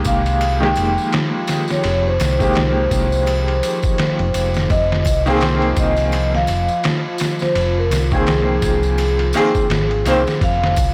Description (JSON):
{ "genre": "trip hop", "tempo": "84 BPM", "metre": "4/4", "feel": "swing 58% on 16ths", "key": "F minor", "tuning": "A4 = 441 Hz", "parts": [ { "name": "bright upright piano", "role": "accompaniment", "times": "0.0-10.2 s", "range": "Eb3 to C5", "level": "-23 LUFS", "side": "equal", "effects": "tremolo, tape echo" }, { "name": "deep dark ambient pad", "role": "sustained chords", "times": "0.5-10.9 s", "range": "F3 to Bb4", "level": "-30 LUFS", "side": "equal", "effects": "chorus, built-in reverb" }, { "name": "hollow-body short-scale fingered electric bass", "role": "bass", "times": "0.0-10.9 s", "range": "F1 to C2", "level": "-22 LUFS", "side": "equal", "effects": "none" }, { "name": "tambourine and triangle", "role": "percussion", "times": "0.0-10.9 s", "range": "none", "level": "-37 LUFS", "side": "equal", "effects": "none" }, { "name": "vibraphone with soft mallets", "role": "melody", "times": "0.1-10.9 s", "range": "Ab4 to G5", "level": "-23 LUFS", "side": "equal", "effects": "vintage 12-bit sampler grit, tape echo" }, { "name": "trip hop sampler-style drum kit", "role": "drums", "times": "0.1-10.9 s", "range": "kick drum, ride cymbal, snare drum", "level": "-24 LUFS", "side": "equal", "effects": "overdrive" } ], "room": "light reverb, small room ambience", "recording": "blown-out, overdriven recording, overdrive", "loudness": "-17 LUFS", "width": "mono", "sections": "0.0-10.9 A section", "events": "none", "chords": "0.0 Fm11; 4.7 Abadd9/F; 10.4 Fmadd11" }